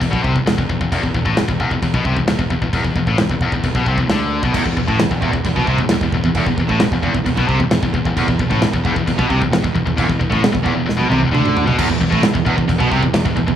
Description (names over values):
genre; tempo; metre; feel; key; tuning
heavy metal; 132 BPM; 4/4; straight; unclear; A4 = 439 Hz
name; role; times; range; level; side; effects
heavy high-gain guitar; riff; 0.0-13.6 s; E2 to D3; -19 LUFS; left 5 dB; distortion
growling fingered electric bass; bass; 0.0-13.6 s; E1 to D2; -21 LUFS; right 1 dB; overdrive
modern studio drum kit; drums; 0.0-13.6 s; china cymbal, crash cymbal, kick drum, snare drum, toms; -20 LUFS; right 1 dB; none
cranked stack guitar; riff; 4.5-13.6 s; E2 to D3; -20 LUFS; right 4 dB; overdrive
tight distorted guitar; riff; 11.8-13.6 s; E2 to C3; -21 LUFS; right 14 dB; distortion
room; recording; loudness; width
little or no reverb; small room reverb; -14 LUFS; side -10 dB against mid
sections
0.0-13.6 A section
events
drum fill 10.9-11.8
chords
0.0 E5